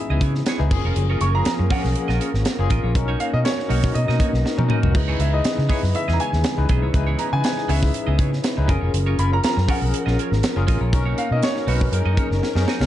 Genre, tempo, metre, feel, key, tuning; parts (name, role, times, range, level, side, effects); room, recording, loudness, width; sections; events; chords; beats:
polished 1980s jazz-funk pop; 120 BPM; 4/4; swing 54% on 16ths; F# major; A4 = 441 Hz
warm grand piano; melody; 0.0-12.6 s; A#4 to C#6; -27 LUFS; equal; ping-pong delay
overdriven tine electric piano; accompaniment; 0.0-12.9 s; E#3 to B4; -27 LUFS; left 5 dB; medium tremolo, analog chorus
muted studio string section; sustained chords; 0.0-12.9 s; C#3 to A#4; -32 LUFS; right 2 dB
clean electric guitar; riff; 0.1-12.9 s; A#3 to D#5; -31 LUFS; right 7 dB; wide subtle chorus
vintage muted fingered electric bass; bass; 0.1-12.9 s; E#1 to C#3; -20 LUFS; equal
tight funk drum kit; drums; 0.2-12.9 s; crash cymbal, hi-hat, kick drum, snare drum, toms; -23 LUFS; equal
small room ambience; dark, warm production, nothing above 10.8 kHz; -18 LUFS; side -12 dB against mid
0.0-12.9 A section
drum fill 4.5-4.9, 12.4-12.9
0.0 C#m7; 0.7 F#maj7; 3.0 Bmaj9; 4.9 C#m7; 8.7 F#maj7; 10.9 Bmaj9; 11.9 F#6
0.46 | 0.96 1.46 1.96 2.46 | 2.95 3.45 3.95 4.45 | 4.95 5.45 5.95 6.45 | 6.94 7.44 7.94 8.44 | 8.94 9.44 9.94 10.43 | 10.93 11.43 11.93 12.43